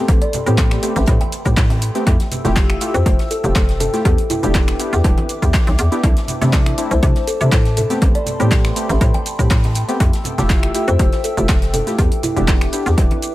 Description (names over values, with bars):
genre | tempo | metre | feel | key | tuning
deep house | 121 BPM | 4/4 | swing 53% on 16ths | A minor | A4 = 440 Hz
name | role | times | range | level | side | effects
kalimba | melody | 0.0-12.7 s | E4 to G5 | -25 LUFS | left 1 dB | dub echo
dark analog pad | sustained chords | 0.0-13.3 s | A4 to E6 | -30 LUFS | left 1 dB | chorus, sidechain pumping
warm analog keys | stabs | 0.0-13.1 s | A3 to G4 | -23 LUFS | left 1 dB | chorus, sidechain pumping, analog delay
hollow knocking FM bass | bass | 0.1-13.1 s | E1 to C3 | -18 LUFS | equal | sidechain pumping
electronic kick drum | drums | 0.1-13.1 s | none | -16 LUFS | equal | overdrive
open jazz drum kit | drums | 0.1-13.3 s | hi-hat, snare drum | -38 LUFS | left 3 dB | none
punchy analog drum machine | drums | 0.1-13.3 s | finger snaps, handclaps, hi-hat, shaker | -25 LUFS | equal | overdrive, dub echo
congas | percussion | 0.3-13.2 s | none | -28 LUFS | right 1 dB | sidechain pumping on perc, dub echo
room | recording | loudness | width
small room ambience | echo-heavy mix | -14 LUFS | side -16 dB against mid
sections
0.0-13.3 A section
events
none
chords
0.0 Am9; 2.1 Fmaj9; 4.1 Em7; 6.0 C69; 7.8 Am9; 10.0 Fmaj9; 12.0 Em7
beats
| 0.09 0.58 1.08 1.57 | 2.07 2.56 3.06 3.56 | 4.05 4.55 5.04 5.54 | 6.04 6.53 7.03 7.52 | 8.02 8.51 9.01 9.51 | 10.00 10.50 10.99 11.49 | 11.98 12.48 12.98